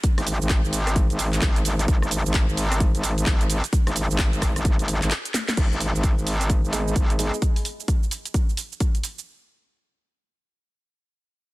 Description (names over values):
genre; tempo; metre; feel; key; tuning
bass house; 130 BPM; 4/4; swing 62% on 16ths; G# minor; A4 = 443 Hz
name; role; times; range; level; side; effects
electronic kick drum; drums; 0.0-8.9 s; none; -21 LUFS; equal; overdrive
garage drum kit; drums; 0.0-9.3 s; crash cymbal, handclaps, hi-hat, rim click, shaker, snare drum; -28 LUFS; right 1 dB; none
metallic wobble bass; bass; 0.2-7.3 s; G#1; -24 LUFS; equal; distortion, chorus, sidechain pumping
warm concert grand piano; stabs; 6.7-7.3 s; G#3 to G#4; -31 LUFS; right 1 dB; sidechain pumping, digital delay
room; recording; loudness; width
little or no reverb; dense, heavily limited modern master; -20 LUFS; side -20 dB against mid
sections
0.0-5.6 A section; 5.6-9.3 B section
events
drop 0.0-5.6; break 5.1-5.6; drum fill 5.3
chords
none